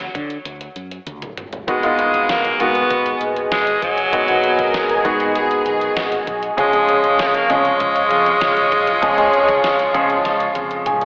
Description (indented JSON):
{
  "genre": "1980s-style pop",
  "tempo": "98 BPM",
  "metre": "4/4",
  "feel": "straight",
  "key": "unclear",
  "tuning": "A4 = 440 Hz",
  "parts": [
    { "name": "raspy tenor saxophone", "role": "melody", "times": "0.0-10.9 s", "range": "F#3 to B3", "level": "-21 LUFS", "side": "equal", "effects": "none" },
    { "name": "mellow fretless electric bass", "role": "bass", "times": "0.0-11.1 s", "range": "F#1 to D3", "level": "-36 LUFS", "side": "equal", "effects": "none" },
    { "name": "clean 12-bit digital drum machine", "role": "drums", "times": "0.0-11.1 s", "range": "hi-hat, kick drum, snare drum, toms", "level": "-30 LUFS", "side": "equal", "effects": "none" },
    { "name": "clear concert grand piano", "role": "accompaniment", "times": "1.7-11.1 s", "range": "D#3 to G#5", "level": "-22 LUFS", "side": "equal", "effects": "subtle chorus" },
    { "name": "sweeping resonant pad", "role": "sustained chords", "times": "1.7-11.1 s", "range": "G#4 to C#6", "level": "-24 LUFS", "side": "equal", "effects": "chorus" },
    { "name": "warm symphonic violin section", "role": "second line", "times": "4.4-10.8 s", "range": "E#4 to A#4", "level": "-27 LUFS", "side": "equal", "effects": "analog delay" }
  ],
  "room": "wet lush hall reverb, RT60 2.2 s",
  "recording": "dreamy mix soaked in reverb, telephone sound",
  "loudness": "-17 LUFS",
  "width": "mono",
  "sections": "0.0-11.1 A section",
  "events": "drum fill 1.1-1.7, 10.3-11.1; grand piano fill 10.6-11.1",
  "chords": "0.0 D; 1.4 G#m7; 6.6 C#"
}